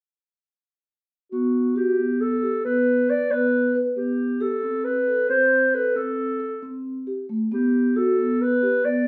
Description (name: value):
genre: contemporary instrumental, contemporary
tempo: 136 BPM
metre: 7/4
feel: straight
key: G major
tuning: A4 = 440 Hz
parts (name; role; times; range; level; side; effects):
- dark clarinet; melody; 1.3-9.1 s; F#4 to D5; -24 LUFS; equal; none
- vibraphone with soft mallets; arpeggios; 1.3-9.1 s; A3 to B4; -25 LUFS; equal; none
room: wet studio reverb, RT60 0.8 s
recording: heard from further back in the room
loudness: -22 LUFS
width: mono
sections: 1.3-9.1 A section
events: none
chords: 1.3 G; 4.4 Am; 7.5 G